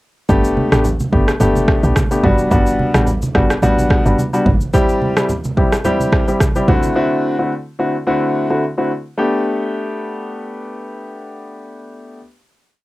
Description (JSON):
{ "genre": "afrobeats", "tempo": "108 BPM", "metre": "4/4", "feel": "swing 55% on 16ths", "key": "G major", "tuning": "A4 = 439 Hz", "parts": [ { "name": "warm grand piano", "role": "accompaniment", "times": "0.3-12.2 s", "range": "D3 to G4", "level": "-17 LUFS", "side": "left 1 dB", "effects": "cassette tape" }, { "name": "woody log drum bass", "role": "bass", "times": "0.3-4.7 s", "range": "G1 to B1", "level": "-17 LUFS", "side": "equal", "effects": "none" }, { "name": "afro-pop drum kit", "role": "drums", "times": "0.3-6.9 s", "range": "kick drum, rim click, shaker", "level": "-16 LUFS", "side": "equal", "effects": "cassette tape" }, { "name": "congas", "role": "percussion", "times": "0.3-6.8 s", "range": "none", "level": "-22 LUFS", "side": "right 2 dB", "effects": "none" } ], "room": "light reverb", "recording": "home recording on cassette", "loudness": "-13 LUFS", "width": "side -18 dB against mid", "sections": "0.3-9.2 verse; 9.2-11.4 final chord", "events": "none", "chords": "0.3 Gadd9; 2.2 Gmaj9; 4.7 C; 6.7 D7; 9.2 Gadd9" }